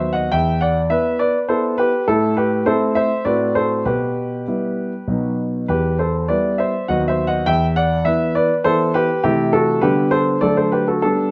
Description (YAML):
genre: classical-period piano sonatina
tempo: 102 BPM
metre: 3/4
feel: straight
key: E minor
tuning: A4 = 436 Hz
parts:
  - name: clear concert grand piano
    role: solo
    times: 0.0-11.3 s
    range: D#2 to G5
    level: -18 LUFS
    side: equal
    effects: none
room: moderate large studio reverb, RT60 1.4 s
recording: none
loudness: -18 LUFS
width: mono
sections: 0.0-11.3 A section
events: none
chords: 0.3 Em; 2.1 Am; 3.3 F#dim/A; 3.9 Em/B; 5.1 B; 5.7 Em; 6.9 B/D#; 7.5 Em; 9.2 Am7/C; 9.8 G/D; 10.4 D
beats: | 0.32 0.90 1.49 | 2.07 2.66 3.25 | 3.86 4.47 5.08 | 5.69 6.29 6.88 | 7.47 8.06 8.65 | 9.24 9.82 10.41 | 11.02